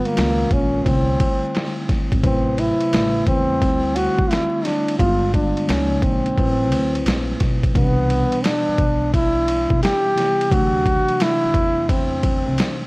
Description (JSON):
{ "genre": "hip hop, jazz-hop", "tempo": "87 BPM", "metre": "4/4", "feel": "swing 66% on 16ths", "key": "unclear", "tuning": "A4 = 445 Hz", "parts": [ { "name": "mellow trombone", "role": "melody", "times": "0.0-12.9 s", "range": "Bb3 to G4", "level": "-20 LUFS", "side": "equal", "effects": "analog delay" }, { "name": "mellow tine electric piano", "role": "accompaniment", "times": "0.0-12.9 s", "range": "B2 to B4", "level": "-24 LUFS", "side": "equal", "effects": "medium stereo tremolo" }, { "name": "boom bap sampler-style drum kit", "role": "drums", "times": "0.1-12.8 s", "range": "hi-hat, kick drum, ride cymbal, snare drum", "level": "-22 LUFS", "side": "equal", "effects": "overdrive, vintage 12-bit sampler grit" }, { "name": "upright bass", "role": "bass", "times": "0.2-12.6 s", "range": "G1 to E2", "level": "-24 LUFS", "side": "equal", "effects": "none" } ], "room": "light reverb, digital ambience", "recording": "worn, warbling old tape, cassette tape, vinyl crackle, warbly pitch drift", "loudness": "-16 LUFS", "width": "side -24 dB against mid", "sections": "0.0-7.8 A section; 7.8-12.9 B section", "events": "none", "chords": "0.2 C#6; 0.9 C6; 2.2 Am69; 2.9 A9; 3.6 D7sus4; 5.0 G7b9; 5.7 C#6; 6.4 Am69; 7.8 Cmaj9; 10.5 D9", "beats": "0.17 0.85 1.54 | 2.23 2.92 3.61 4.30 | 4.99 5.68 6.37 7.06 | 7.75 8.44 9.13 9.82 | 10.51 11.20 11.89 12.58" }